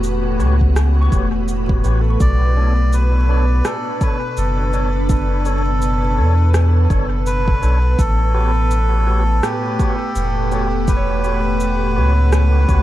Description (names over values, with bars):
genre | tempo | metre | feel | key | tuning
ambient dub | 83 BPM | 4/4 | swing 59% on 16ths | A mixolydian | A4 = 443 Hz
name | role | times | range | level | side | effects
soft additive organ-like pad | sustained chords | 0.0-12.8 s | A2 to F#5 | -23 LUFS | equal | ensemble chorus, built-in reverb
soft dub sub bass | bass | 0.0-12.8 s | E1 to E2 | -16 LUFS | equal | tube saturation
electronic shaker and rim click | drums | 0.0-12.8 s | none | -27 LUFS | right 1 dB | dub echo
tonewheel organ | stabs | 0.4-12.8 s | D4 to C#5 | -29 LUFS | left 1 dB | overdrive, fast rotary speaker, dub echo
electronic kick drum | drums | 0.6-12.8 s | none | -18 LUFS | equal | none
concert harp | arpeggios | 1.0-5.1, 10.5-12.8 s | A4 to C#6 | -31 LUFS | right 4 dB | tape echo
melodica | melody | 2.2-12.8 s | G4 to D5 | -23 LUFS | equal | tape echo
room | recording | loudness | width
light reverb | dark, warm production, vinyl crackle | -14 LUFS | side -14 dB against mid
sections
0.0-12.8 A section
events
none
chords
0.0 A13; 2.2 Bm9; 8.0 A13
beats
0.04 0.76 1.48 | 2.20 2.93 3.65 4.37 | 5.09 5.82 6.54 7.26 | 7.99 8.71 9.43 10.16 | 10.88 11.60 12.32